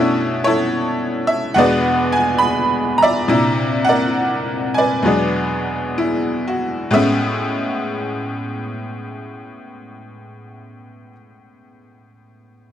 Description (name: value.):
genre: solo jazz.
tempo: 62-73 BPM.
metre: 4/4.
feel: swing 68% on 8ths.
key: A major.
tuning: A4 = 442 Hz.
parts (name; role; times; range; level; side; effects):
tack piano; solo; 0.0-12.7 s; E2 to B5; -16 LUFS; equal; none.
room: light reverb.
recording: dry, close 1970s-style studio recording.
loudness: -16 LUFS.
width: side -10 dB against mid.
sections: 0.0-6.9 A section; 6.9-10.8 B section.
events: slowing down 0.0-6.9.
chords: 0.0 Bm11; 1.6 E9; 3.3 C9; 5.0 E9; 6.9 Amaj9.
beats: 0.74 1.57 2.41 | 3.27 4.15 5.05 5.97 | 6.93 7.90 8.87 9.84.